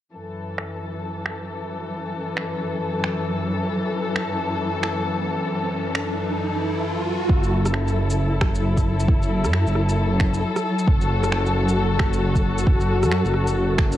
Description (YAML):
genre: future garage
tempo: 134 BPM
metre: 4/4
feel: swing 61% on 16ths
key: F# minor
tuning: A4 = 442 Hz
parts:
  - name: dark studio string section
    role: sustained chords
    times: 0.1-14.0 s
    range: F#2 to A4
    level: -24 LUFS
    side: left 2 dB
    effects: sidechain pumping
  - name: electronic finger snaps, shaker and rim click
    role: drums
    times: 0.6-14.0 s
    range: none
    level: -28 LUFS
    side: right 2 dB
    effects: low-pass filter on snare, low-pass filter on perc
  - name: riser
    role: sound effects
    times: 4.9-7.3 s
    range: none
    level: -29 LUFS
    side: right 3 dB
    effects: none
  - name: swelling detuned saw bass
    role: bass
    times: 7.3-14.0 s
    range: F#1 to F#2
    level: -22 LUFS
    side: equal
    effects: sidechain pumping
  - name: electronic kick drum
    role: drums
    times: 7.3-13.9 s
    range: none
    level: -20 LUFS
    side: equal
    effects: none
room: light reverb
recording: cassette tape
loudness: -20 LUFS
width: side -13 dB against mid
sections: 0.1-7.3 A section; 7.3-14.0 B section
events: filter sweep on drum 0.1-7.3; riser 4.9-7.3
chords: 0.1 F#m7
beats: | 0.13 0.58 1.02 1.47 | 1.92 2.37 2.82 3.26 | 3.71 4.16 4.61 5.05 | 5.50 5.95 6.40 6.85 | 7.29 7.74 8.19 8.64 | 9.09 9.53 9.98 10.43 | 10.88 11.32 11.77 12.22 | 12.67 13.12 13.56